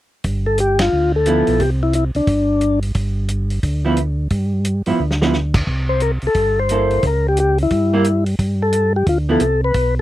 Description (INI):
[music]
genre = soul jazz organ trio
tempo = 177 BPM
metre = 4/4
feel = swing 63% on 8ths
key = G mixolydian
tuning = A4 = 439 Hz
[part]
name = tonewheel organ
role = bass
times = 0.2-10.0 s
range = G1 to G2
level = -19 LUFS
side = equal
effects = slow rotary speaker
[part]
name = warm soul drum kit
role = drums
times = 0.2-9.8 s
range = crash cymbal, hi-hat, kick drum, ride cymbal, snare drum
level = -21 LUFS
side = equal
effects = none
[part]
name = percussive tonewheel organ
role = melody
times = 0.5-2.8, 5.9-10.0 s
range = D4 to C5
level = -17 LUFS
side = left 2 dB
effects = slow rotary speaker
[part]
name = vintage hollow-body jazz guitar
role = accompaniment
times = 1.3-1.6, 3.8-9.4 s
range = F3 to A4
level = -18 LUFS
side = right 3 dB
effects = none
[sound]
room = little or no reverb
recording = dry, close 1970s-style studio recording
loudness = -15 LUFS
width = side -14 dB against mid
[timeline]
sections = 0.2-10.0 A section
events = band accent 0.8; drum fill 5.0-5.3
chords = 0.2 G13; 1.6 Csus2; 3.0 G5; 5.7 C6; 7.0 C#dim; 8.4 Gsus2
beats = | 0.24 0.58 0.92 1.26 | 1.60 1.94 2.28 2.62 | 2.96 3.29 3.63 3.97 | 4.31 4.65 4.99 5.33 | 5.67 6.01 6.35 6.69 | 7.03 7.37 7.71 8.05 | 8.38 8.72 9.06 9.40 | 9.74